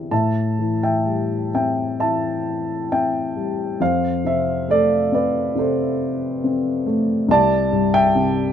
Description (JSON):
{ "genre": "classical, lyrical solo piano", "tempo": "63-71 BPM", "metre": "4/4", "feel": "rubato", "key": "A minor", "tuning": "A4 = 441 Hz", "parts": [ { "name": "dark upright piano", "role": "solo", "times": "0.0-8.5 s", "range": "C2 to A5", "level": "-18 LUFS", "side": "equal", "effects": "none" } ], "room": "little or no reverb", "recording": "close, detailed microphones", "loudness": "-18 LUFS", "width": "side -9 dB against mid", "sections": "0.1-8.5 A section", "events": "none", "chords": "0.1 Am7; 3.8 F; 7.3 Csus2" }